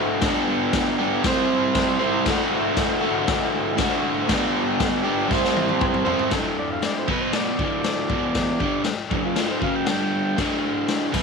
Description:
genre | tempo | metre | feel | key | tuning
garage rock duo or trio | 118 BPM | 4/4 | straight | D mixolydian | A4 = 439 Hz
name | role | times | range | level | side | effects
crunchy overdriven guitar | riff | 0.0-11.2 s | D2 to C5 | -21 LUFS | right 1 dB | none
raw garage drum kit | drums | 0.2-11.2 s | crash cymbal, kick drum, snare drum, toms | -26 LUFS | left 4 dB | none
overdriven combo organ | melody | 6.6-10.4 s | D4 to G5 | -30 LUFS | right 2 dB | none
room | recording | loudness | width
light reverb | 1960s-style stereo | -20 LUFS | side -4 dB against mid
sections
0.0-6.3 A section; 6.3-11.2 B section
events
drum fill 5.3-6.3; transistor combo organ solo 6.3-11.2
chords
0.2 G; 1.2 C; 2.3 D; 4.3 G; 5.3 C; 6.3 D5; 7.1 B5; 7.6 D5; 8.1 E5; 8.6 D; 9.9 G5; 10.4 D5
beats
| 0.22 0.73 1.24 1.75 | 2.26 2.77 3.28 3.79 | 4.29 4.80 5.31 5.82 | 6.32 6.83 7.34 7.85 | 8.35 8.86 9.37 9.88 | 10.38 10.89

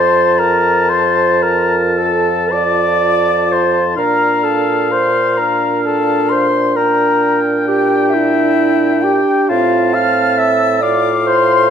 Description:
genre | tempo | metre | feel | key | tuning
classical, slow romantic movement for wind quintet | 35-46 BPM (dotted quarters) | 12/8 | rubato | unclear | A4 = 440 Hz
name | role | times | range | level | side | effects
silver concert flute | melody | 0.0-11.7 s | E5 to F6 | -17 LUFS | left 8 dB | none
clear oboe | second line | 0.0-11.7 s | F5 to A5 | -20 LUFS | left 4 dB | none
dark clarinet | accompaniment | 0.0-11.7 s | E4 to F5 | -16 LUFS | right 6 dB | none
mellow French horn | accompaniment | 0.0-11.7 s | C4 to F4 | -21 LUFS | left 2 dB | none
mellow bassoon | bass | 0.0-11.7 s | F2 to Bb2 | -20 LUFS | right 2 dB | none
room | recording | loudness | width
moderate recital hall reverb, RT60 1.3 s | none | -11 LUFS | side -8 dB against mid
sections
0.0-11.7 A section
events
none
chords
0.0 F; 4.0 Bb; 6.8 Gm6/Bb; 9.5 F/A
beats
0.90 2.53 | 3.98 5.39 6.78 8.14 | 9.50 10.83

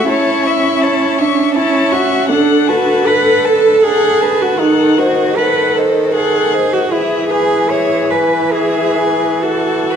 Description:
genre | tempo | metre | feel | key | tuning
classical, slow romantic movement for string quartet | 64-83 BPM | 3/4 | rubato | A major | A4 = 440 Hz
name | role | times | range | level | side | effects
warm violin | melody | 0.0-10.0 s | D#5 to C#6 | -20 LUFS | left 10 dB | none
dark violin | second line | 0.0-10.0 s | G#4 to E5 | -18 LUFS | left 4 dB | none
dark viola | accompaniment | 0.0-10.0 s | D3 to C#4 | -17 LUFS | right 1 dB | none
warm cello | bass | 0.0-10.0 s | D4 to C#5 | -14 LUFS | right 4 dB | none
room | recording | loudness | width
wet recital hall reverb, RT60 1.6 s | dark, warm production | -11 LUFS | side -8 dB against mid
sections
0.0-10.0 A section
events
none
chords
0.1 A/C#; 2.3 Bm7/D; 4.6 D#dim7; 6.9 E; 9.4 Esus4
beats
| 0.10 0.83 1.56 | 2.31 3.07 3.84 | 4.59 5.37 6.14 | 6.92 7.70 8.53 | 9.43

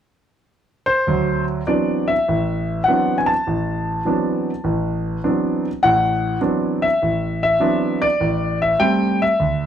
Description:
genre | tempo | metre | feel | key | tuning
solo jazz | 101 BPM | 4/4 | swing 69% on 8ths, rubato | D mixolydian | A4 = 441 Hz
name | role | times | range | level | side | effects
warm concert grand piano | solo | 0.9-9.7 s | A1 to A5 | -17 LUFS | equal | none
room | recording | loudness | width
moderate club reverb, RT60 0.6 s | none | -17 LUFS | side -9 dB against mid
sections
0.0-1.1 A section; 1.1-9.7 B section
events
none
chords
0.0 N.C.; 1.1 D13; 8.2 Am7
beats
0.47 | 1.06 1.67 2.27 2.87 | 3.47 4.07 4.66 5.25 | 5.84 6.42 7.02 7.61 | 8.20 8.80 9.40

